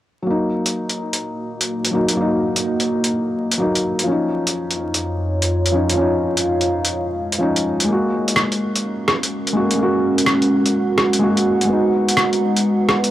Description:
future garage; 126 BPM; 4/4; swing 65% on 16ths; Eb minor; A4 = 439 Hz
felt-muted upright piano; accompaniment; 0.2-13.1 s; F3 to Gb4; -20 LUFS; left 1 dB; vintage 12-bit sampler grit, analog delay
warbly tape-like pad; sustained chords; 1.3-13.1 s; F2 to Gb5; -20 LUFS; right 1 dB; chorus, built-in reverb
lo-fi sampler-style drum kit; drums; 0.7-13.1 s; hi-hat, rim click; -19 LUFS; equal; overdrive
light reverb; dry, gritty hardware recording, vinyl crackle; -16 LUFS; side -13 dB against mid
0.3-13.1 A section
filter sweep on ambient pad 0.3-13.1
0.3 Ebm; 4.1 Dbadd9/F; 7.9 Gbadd9; 11.7 Abm

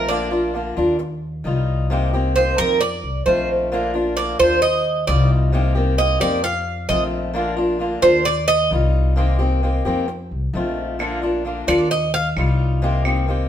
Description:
latin, Cuban son and guajira; 132 BPM; 4/4; straight; Bb major; A4 = 440 Hz
fingerpicked swing-style acoustic guitar; accompaniment; 0.0-13.5 s; C3 to G4; -22 LUFS; left 2 dB
Cuban tres; arpeggios; 0.0-8.7, 11.7-12.3 s; Bb4 to F5; -18 LUFS; right 2 dB
upright bass; bass; 0.0-13.4 s; Bb1 to F2; -21 LUFS; left 1 dB
claves; percussion; 11.0-13.3 s; -28 LUFS; right 2 dB
moderate stone room reverb, RT60 1.0 s; band playing live in one room; -17 LUFS; side -10 dB against mid
0.0-13.5 A section
Cuban tres solo 0.0-13.5
0.1 Bb; 1.0 Ebadd9; 1.9 Cm7; 2.8 F7; 3.7 Bb; 4.6 Ebadd9; 5.5 Cm7; 6.4 F7; 7.3 Bb; 8.3 Ebadd9; 9.2 Cm7; 10.1 F7; 11.0 Bb; 11.9 Ebadd9; 12.8 Cm7

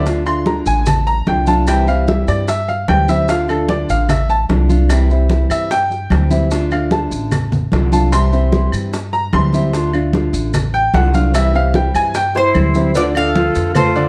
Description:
latin, Cuban son and guajira; 149 BPM; 4/4; straight; D minor; A4 = 439 Hz
nylon-string guitar; accompaniment; 0.0-13.8 s; C3 to F4; -22 LUFS; equal
bright baby grand piano; arpeggios; 0.0-14.1 s; D3 to C6; -21 LUFS; equal
upright bass; bass; 0.0-14.1 s; A1 to G2; -19 LUFS; equal
bongos and cowbell; percussion; 0.1-14.0 s; -27 LUFS; equal
congas; percussion; 0.1-14.1 s; -22 LUFS; equal
maracas; percussion; 0.1-14.1 s; -36 LUFS; equal
claves; percussion; 0.3-14.0 s; -32 LUFS; equal
Cuban tres; melody; 12.4-14.1 s; C5 to F5; -20 LUFS; equal
breathy silver concert flute; second line; 12.4-14.1 s; E4 to A4; -24 LUFS; equal
light reverb; dark, warm production, faint mains hum; -15 LUFS; mono
0.1-13.0 A section; 13.0-14.1 B section
grand piano solo 0.1-13.0; drum fill 12.3-13.0
0.1 Dm; 1.7 C; 3.3 Dm; 4.9 C; 6.5 Dm; 8.1 C; 9.7 Dm; 11.3 C; 13.0 Dm

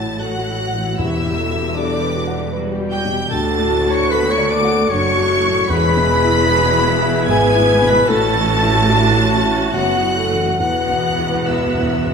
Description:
cinematic, emotional film score for orchestra; 68-78 BPM; 3/4; rubato; A4 = 442 Hz
clear studio violin section; melody; 0.0-12.1 s; D6 to D7; -24 LUFS; equal
rich studio violin section; second line; 0.0-12.1 s; D5 to D6; -25 LUFS; right 1 dB
felt-muted upright piano; accompaniment; 0.0-12.1 s; D2 to F#5; -24 LUFS; left 3 dB
rich studio viola section; accompaniment; 0.0-12.1 s; F#3 to F#5; -25 LUFS; right 2 dB
mellow French horn section; sustained chords; 0.0-12.1 s; G3 to B4; -22 LUFS; left 3 dB
clear studio double bass section; bass; 0.0-12.1 s; E1 to D2; -24 LUFS; right 5 dB
warm studio cello section; bass; 0.0-12.1 s; D2 to A2; -23 LUFS; right 3 dB
dark clarinet; second line; 0.2-12.1 s; D4 to D5; -24 LUFS; left 1 dB
mellow large flute ensemble; second line; 0.2-12.1 s; D5 to D6; -23 LUFS; left 2 dB
timpani; percussion; 1.0-2.1, 5.7-6.8, 10.6-12.1 s; E2; -27 LUFS; equal
wet scoring stage reverb, RT60 1.5 s; minimal, uncompressed stereo recording; -14 LUFS; side -6 dB against mid
0.0-12.1 A section
timpani fill 10.6-12.1
0.0 A6; 1.0 Emadd9; 3.3 D; 5.7 E; 8.1 A6; 10.6 Esus2

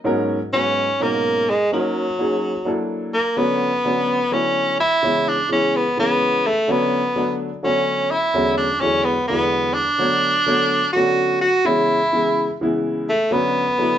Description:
jazz; 254 BPM (eighths); 7/8; straight; G# minor, B dorian from 3.4 s; A4 = 440 Hz
warm concert grand piano; accompaniment; 0.0-14.0 s; E2 to C#5; -22 LUFS; equal
edgy tenor saxophone; melody; 0.5-14.0 s; F#3 to F#4; -18 LUFS; equal
moderate large studio reverb, RT60 0.8 s; band playing live in one room, nothing above 7.8 kHz; -17 LUFS; side -10 dB against mid
0.0-3.4 A section; 3.4-14.0 B section
0.1 G#m11; 1.7 D#m7; 2.7 F#7alt; 3.4 Bm9; 5.0 C#m7; 6.7 Bm9/D; 8.4 E13; 10.0 Bm9; 11.7 C#m7; 13.3 Bm9/D

